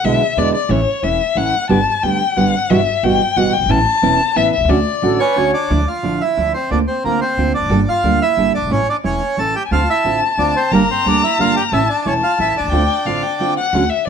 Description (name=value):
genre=tango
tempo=180 BPM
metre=3/4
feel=rubato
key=D major, D minor from 5.7 s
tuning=A4 = 439 Hz
part: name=warm violin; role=second line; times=0.0-5.4, 9.7-14.1 s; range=C#5 to Bb5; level=-17 LUFS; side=left 7 dB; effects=none
part: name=nylon-string guitar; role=accompaniment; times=0.0-14.1 s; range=B2 to A4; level=-18 LUFS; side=right 4 dB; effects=none
part: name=upright bass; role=bass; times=0.0-14.1 s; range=E1 to E2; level=-22 LUFS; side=equal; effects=none
part: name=bright reedy silver concert flute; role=second line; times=5.0-5.7 s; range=A4 to C#5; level=-22 LUFS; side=left 8 dB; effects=none
part: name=bandoneon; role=melody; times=5.2-13.5 s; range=Bb3 to A5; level=-18 LUFS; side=right 3 dB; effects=none
room=moderate studio reverb, RT60 0.8 s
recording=none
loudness=-14 LUFS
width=side -7 dB against mid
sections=0.0-5.7 A section; 5.7-13.7 B section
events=violin solo 0.0-5.7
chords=0.0 E7; 0.7 A; 1.7 Gadd9; 2.7 Emadd9/G; 3.7 Aadd9; 4.7 Dmaj7; 5.7 Dmadd9; 6.7 Bbadd9/D; 7.7 Gmadd9; 8.7 A; 9.7 Dm7; 10.7 Gmadd9; 11.7 A; 12.7 Dm7